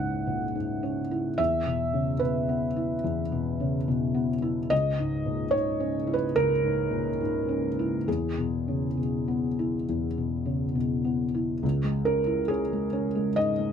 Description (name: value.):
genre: neoclassical minimalist piano.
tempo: 66-73 BPM.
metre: 4/4.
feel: rubato.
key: C# dorian.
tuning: A4 = 440 Hz.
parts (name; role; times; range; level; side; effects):
felt-muted upright piano; solo; 0.0-13.7 s; C#2 to F#5; -25 LUFS; equal; none.
room: light reverb.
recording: none.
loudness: -25 LUFS.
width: side -8 dB against mid.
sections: 0.0-11.6 A section; 11.6-13.7 B section.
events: none.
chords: 0.0 C#m; 1.4 E5; 4.7 C#m; 8.1 E; 11.6 C#m.